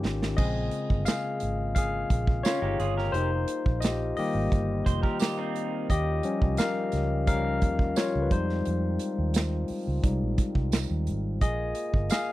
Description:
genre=lush 1970s-style soul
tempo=87 BPM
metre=4/4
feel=straight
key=Bb dorian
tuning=A4 = 439 Hz
part: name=barky tine electric piano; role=accompaniment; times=0.0-12.3 s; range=Db3 to F5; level=-29 LUFS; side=left 3 dB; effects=none
part: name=vintage muted fingered electric bass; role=bass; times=0.0-12.1 s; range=F1 to F2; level=-29 LUFS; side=right 1 dB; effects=none
part: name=modern studio drum kit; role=drums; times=0.1-12.3 s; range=crash cymbal, hi-hat, kick drum, snare drum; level=-27 LUFS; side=right 1 dB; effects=none
part: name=mellow French horn section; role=sustained chords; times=0.4-12.3 s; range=Bb2 to F4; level=-38 LUFS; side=right 2 dB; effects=none
part: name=tambourine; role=percussion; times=1.1-12.3 s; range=none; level=-40 LUFS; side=right 21 dB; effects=none
part: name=electric guitar through a small old amp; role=riff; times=2.5-5.9 s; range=C4 to C5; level=-33 LUFS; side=right 4 dB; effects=spring reverb
room=light reverb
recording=dry, close 1970s-style studio recording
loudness=-25 LUFS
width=side -16 dB against mid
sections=0.4-12.3 A section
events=drum fill 0.0-0.4; tine electric piano solo 0.4-12.3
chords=0.4 Bbm7; 3.1 F9sus4; 5.9 Eb9; 8.3 Fm7; 11.4 Bb7(no3)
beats=| 0.38 1.07 1.76 2.45 | 3.13 3.83 4.51 5.20 | 5.89 6.58 7.27 7.96 | 8.65 9.34 10.03 10.72 | 11.41 12.10

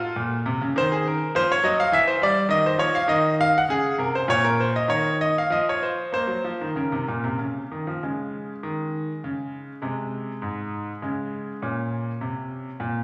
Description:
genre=classical, baroque-style suite movement for grand piano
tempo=94-104 BPM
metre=3/4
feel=rubato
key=Bb minor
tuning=A4 = 440 Hz
part: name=bright grand piano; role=solo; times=0.0-13.0 s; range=Ab2 to Gb5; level=-24 LUFS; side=equal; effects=none
room=wet scoring stage reverb, RT60 2.0 s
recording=none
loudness=-24 LUFS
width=mono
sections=0.0-8.0 A section; 8.0-13.0 A section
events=none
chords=0.1 Bbm; 0.7 Ebm69; 1.9 Em7; 2.5 Eb7sus2; 3.7 Bbm9; 4.3 Bb5; 4.9 N.C.; 6.1 Bbm; 8.0 Db5; 9.8 Ab/C; 11.0 Db5; 11.6 Bbm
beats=0.15 | 0.75 1.34 1.92 | 2.50 3.08 3.68 | 4.27 4.88 5.49 | 6.11 6.75 7.37 | 8.00 8.62 9.22 | 9.82 10.43 11.03 | 11.63 12.21 12.80

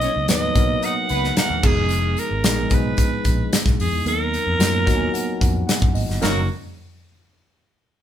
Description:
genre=polished 1980s jazz-funk pop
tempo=111 BPM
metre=4/4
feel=straight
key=F# major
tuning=A4 = 439 Hz
part: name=raspy alto saxophone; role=melody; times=0.0-6.5 s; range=F#4 to F#5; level=-23 LUFS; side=right 2 dB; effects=none
part: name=mellow horn section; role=second line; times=0.0-1.6, 6.2-6.4 s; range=F#3 to D#5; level=-27 LUFS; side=left 2 dB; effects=none
part: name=mellow tine electric piano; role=accompaniment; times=0.0-6.5 s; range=F3 to A#5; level=-25 LUFS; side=left 1 dB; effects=medium stereo tremolo
part: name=fingered electric bass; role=bass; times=0.0-6.5 s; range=F1 to F#2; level=-24 LUFS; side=equal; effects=none
part: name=modern studio drum kit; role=drums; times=0.0-6.4 s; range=crash cymbal, hi-hat, kick drum, snare drum, splash cymbal, toms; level=-21 LUFS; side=equal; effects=none
part: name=tambourine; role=percussion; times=0.0-6.5 s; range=none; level=-37 LUFS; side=left 6 dB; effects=none
room=moderate studio reverb, RT60 0.7 s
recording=band playing live in one room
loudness=-17 LUFS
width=side -10 dB against mid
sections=0.0-6.2 A section; 6.2-8.0 B section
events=tine electric piano fill 4.6-6.2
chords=0.0 Bmaj7; 1.6 Fm7b5; 4.1 Bmaj7/D#; 6.2 F#6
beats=0.29 0.83 1.37 | 1.91 2.44 2.98 3.52 | 4.06 4.60 5.14 5.68 | 6.22

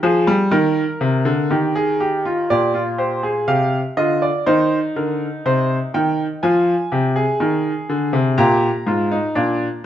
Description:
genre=classical, baroque-style 3-part fugue for grand piano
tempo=61 BPM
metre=4/4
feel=straight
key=unclear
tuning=A4 = 440 Hz
part: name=bright grand piano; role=solo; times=0.0-9.9 s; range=Ab2 to Bb5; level=-16 LUFS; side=equal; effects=none
room=moderate large studio reverb, RT60 1.3 s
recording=dark, warm production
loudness=-16 LUFS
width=side -11 dB against mid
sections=0.0-2.5 A section; 2.5-9.9 B section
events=none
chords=0.0 Eb; 2.5 Gm/Bb; 4.5 Cm7; 6.4 Fm; 8.4 Bb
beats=0.53 1.51 | 2.49 3.48 4.47 5.45 | 6.43 7.41 8.38 9.36

